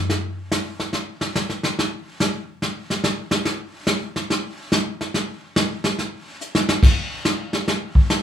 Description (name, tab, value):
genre	jazz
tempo	143 BPM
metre	4/4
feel	swing 67% on 8ths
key	none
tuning	none
part	jazz brush drum kit	drums	0.1-8.2 s	brushed snare drum, crash cymbal, hi-hat, kick drum, snare drum	-19 LUFS	equal	none
room	wet club reverb, RT60 0.5 s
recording	studio ambience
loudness	-20 LUFS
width	side -10 dB against mid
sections	0.1-8.2 A section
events	drum fill 6.4-6.8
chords	none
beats	| 0.10 0.52 0.94 1.36 | 1.78 2.20 2.62 3.04 | 3.46 3.88 4.30 4.72 | 5.14 5.56 5.98 6.41 | 6.83 7.25 7.67 8.09